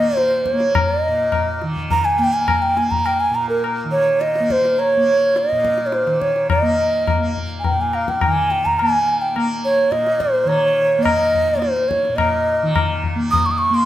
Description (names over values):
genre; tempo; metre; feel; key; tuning
indian classical, Hindustani; 105 BPM; 5/4; straight; Bb raga bageshri; A4 = 440 Hz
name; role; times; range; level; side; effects
mellow bansuri; melody; 0.0-13.9 s; Bb4 to Eb6; -17 LUFS; right 1 dB; none
tanpura; drone; 0.0-13.9 s; Bb2 to Bb3; -24 LUFS; equal; none
tabla; percussion; 0.2-13.5 s; none; -22 LUFS; left 4 dB; none
room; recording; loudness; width
moderate recital hall reverb, RT60 1.8 s; none; -15 LUFS; side -13 dB against mid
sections
0.0-13.9 A section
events
none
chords
none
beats
0.17 | 0.75 1.33 1.91 2.48 3.06 | 3.63 4.21 4.79 5.36 5.93 | 6.50 7.08 7.65 8.22 8.79 | 9.36 9.93 10.49 11.06 11.63 | 12.19 12.76 13.32